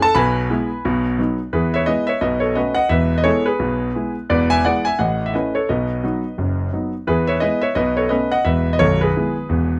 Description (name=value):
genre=jazz, stride piano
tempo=173 BPM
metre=4/4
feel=swing 60% on 8ths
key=E major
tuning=A4 = 440 Hz
part: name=clear grand piano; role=solo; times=0.0-9.8 s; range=B0 to B5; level=-19 LUFS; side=equal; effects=none
room=light reverb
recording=close, detailed microphones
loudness=-19 LUFS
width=mono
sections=0.0-1.5 A section; 1.5-9.8 B section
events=none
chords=0.2 E/B; 0.8 B; 1.5 E; 2.2 B9; 2.9 E; 4.3 E7; 5.0 A; 5.7 B; 7.1 E; 7.8 B9; 8.5 E